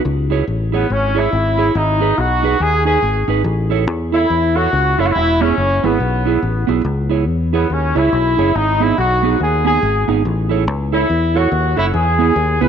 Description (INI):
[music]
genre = ska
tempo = 141 BPM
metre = 4/4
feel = swing 60% on 8ths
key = C# minor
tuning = A4 = 440 Hz
[part]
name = fingered electric bass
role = bass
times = 0.1-12.7 s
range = E1 to E2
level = -18 LUFS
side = left 2 dB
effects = none
[part]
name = mellow electric guitar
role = accompaniment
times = 0.3-12.7 s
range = B3 to C#5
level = -19 LUFS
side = right 9 dB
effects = tape echo
[part]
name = mellow horn section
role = melody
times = 0.7-12.7 s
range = B3 to B4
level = -17 LUFS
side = left 1 dB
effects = none
[sound]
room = moderate plate reverb, RT60 3.2 s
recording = 1960s-style stereo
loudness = -13 LUFS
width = side -8 dB against mid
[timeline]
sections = 0.1-12.7 A section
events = none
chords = 0.1 C#m; 1.7 G#m; 3.5 A; 5.2 E; 6.9 C#m; 8.6 G#m; 10.2 A; 11.9 E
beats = | 0.05 0.47 0.90 1.32 | 1.75 2.17 2.60 3.02 | 3.45 3.88 4.30 4.73 | 5.15 5.58 6.00 6.43 | 6.85 7.28 7.70 8.13 | 8.55 8.98 9.40 9.82 | 10.25 10.67 11.10 11.52 | 11.94 12.37